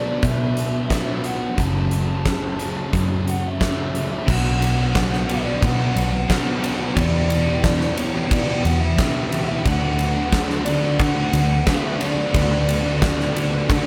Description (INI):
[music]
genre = rock, shoegaze and dream pop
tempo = 89 BPM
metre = 4/4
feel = straight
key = unclear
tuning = A4 = 441 Hz
[part]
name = lead guitar through a small cranked amp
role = melody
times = 0.0-13.9 s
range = C#5 to A5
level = -30 LUFS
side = equal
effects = overdrive, tape echo
[part]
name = crunchy overdriven guitar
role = riff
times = 0.0-13.9 s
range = F#2 to G4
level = -30 LUFS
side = equal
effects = reverse reverb
[part]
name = thick fuzz guitar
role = riff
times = 0.0-13.9 s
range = E2 to D4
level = -30 LUFS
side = equal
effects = distortion, lush chorus
[part]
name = vintage muted picked electric bass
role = bass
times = 0.0-13.9 s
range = F#1 to E3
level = -26 LUFS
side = equal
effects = none
[part]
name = huge arena drum kit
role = drums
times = 0.2-13.9 s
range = crash cymbal, hi-hat, kick drum, ride cymbal, snare drum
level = -25 LUFS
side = equal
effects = none
[part]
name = crunchy overdriven guitar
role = riff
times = 4.3-13.9 s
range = E2 to D4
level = -30 LUFS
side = equal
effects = none
[part]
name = string machine, violins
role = sustained chords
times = 9.7-13.9 s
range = D3 to F#4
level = -34 LUFS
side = equal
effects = none
[sound]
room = little or no reverb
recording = none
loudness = -20 LUFS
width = mono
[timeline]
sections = 0.0-4.3 A section; 4.3-13.9 B section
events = none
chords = 0.0 Bm; 1.6 F#m7; 4.3 Bm; 7.0 Em; 9.6 D6